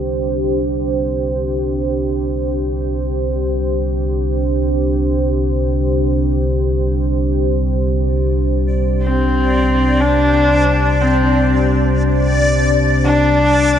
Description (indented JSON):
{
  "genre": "dark ambient drone",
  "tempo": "free time",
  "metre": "none",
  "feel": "none",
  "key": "unclear",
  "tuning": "A4 = 437 Hz",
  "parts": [
    { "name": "deep dark ambient pad", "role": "sustained chords", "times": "0.0-13.8 s", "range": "D4 to C5", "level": "-19 LUFS", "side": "right 1 dB", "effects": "chorus, built-in reverb" },
    { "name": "deep rumbling drone", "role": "drone", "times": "0.0-13.8 s", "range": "C2 to C3", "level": "-18 LUFS", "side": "left 1 dB", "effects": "built-in reverb" },
    { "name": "backwards swelling texture", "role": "texture", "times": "9.5-13.8 s", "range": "D5", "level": "-21 LUFS", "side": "left 1 dB", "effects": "built-in reverb" },
    { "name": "clear horsehead fiddle", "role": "melody", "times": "9.0-13.8 s", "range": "C4 to D4", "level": "-15 LUFS", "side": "left 1 dB", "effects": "ping-pong delay" }
  ],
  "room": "wet huge ambient reverb, RT60 8.3 s",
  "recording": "dark, warm production",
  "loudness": "-14 LUFS",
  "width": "side -9 dB against mid",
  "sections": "0.0-13.8 A section",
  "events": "fade-in on synth drone 0.0-13.8",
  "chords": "0.0 Csus2"
}